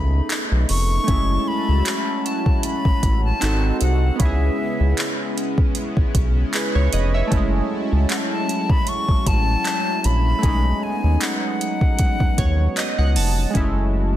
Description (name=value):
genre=contemporary R&B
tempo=77 BPM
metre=4/4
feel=swing 54% on 16ths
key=F# dorian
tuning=A4 = 440 Hz
part: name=breathy silver concert flute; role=melody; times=0.0-13.2 s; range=E5 to C#6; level=-26 LUFS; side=left 2 dB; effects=tape echo
part: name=warm analog keys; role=accompaniment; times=0.0-14.2 s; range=G#3 to A5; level=-26 LUFS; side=right 2 dB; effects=chorus
part: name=chorused pulse-width pad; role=sustained chords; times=0.0-14.2 s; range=C#3 to A5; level=-28 LUFS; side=left 2 dB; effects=none
part: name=round analog bass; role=bass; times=0.0-14.2 s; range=E#1 to D#2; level=-19 LUFS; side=equal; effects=none
part: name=smooth R&B drum kit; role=drums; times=0.3-13.7 s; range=handclaps, hi-hat, kick drum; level=-22 LUFS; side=equal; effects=none
room=little or no reverb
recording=dense, heavily limited modern master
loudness=-17 LUFS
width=side -12 dB against mid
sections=0.0-13.6 A section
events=synth keys fill 12.0-13.6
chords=0.0 B13; 1.1 F#m7; 3.4 G#7b9; 4.2 C#m7; 7.3 F#m7; 10.4 B13; 13.6 F#m9